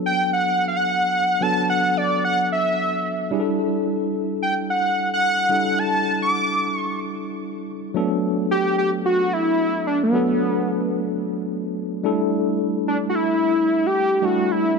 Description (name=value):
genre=R&B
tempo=110 BPM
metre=4/4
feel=swing 60% on 16ths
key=B minor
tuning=A4 = 435 Hz
part: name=tine electric piano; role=accompaniment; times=0.0-14.8 s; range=F#3 to A4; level=-23 LUFS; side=left 1 dB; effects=fast stereo tremolo
part: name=wide unison lead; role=melody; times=0.1-14.8 s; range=B3 to D6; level=-20 LUFS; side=equal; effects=none
room=moderate lush hall reverb, RT60 3.1 s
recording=dark, warm production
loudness=-19 LUFS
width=side -4 dB against mid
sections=0.0-8.0 A section; 8.0-14.8 B section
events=none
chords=0.0 Bm7; 3.3 A7sus4; 8.0 Bm7; 12.0 A7sus4